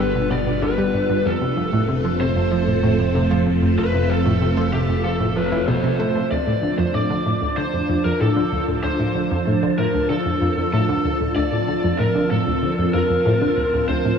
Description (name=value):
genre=ambient, sequencer-driven space music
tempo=95 BPM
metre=4/4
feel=straight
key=D minor from 6.3 s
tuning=A4 = 442 Hz
part: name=lead guitar through a small cranked amp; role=melody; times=0.0-14.2 s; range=G4 to D5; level=-23 LUFS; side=left 1 dB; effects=overdrive, analog delay
part: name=phased string machine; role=sustained chords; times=0.0-14.2 s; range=D3 to A5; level=-22 LUFS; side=equal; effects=ensemble chorus, phaser
part: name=analog pluck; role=riff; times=0.0-14.1 s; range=D2 to A3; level=-22 LUFS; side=equal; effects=chorus, analog delay
part: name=fat analog bass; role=bass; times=0.0-6.3 s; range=F1 to G1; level=-24 LUFS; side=right 1 dB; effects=none
room=wet cathedral reverb, RT60 5.8 s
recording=in a vast, echoing space, cassette tape, small room ambience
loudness=-17 LUFS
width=side -7 dB against mid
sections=0.0-6.3 A section; 6.3-14.2 B section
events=none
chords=0.0 G; 1.3 F; 6.3 Dm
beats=0.00 0.63 | 1.26 1.89 2.52 3.15 | 3.79 4.42 5.05 5.68 | 6.31 6.94 7.58 8.21 | 8.84 9.47 10.10 10.73 | 11.37 12.00 12.63 13.26 | 13.89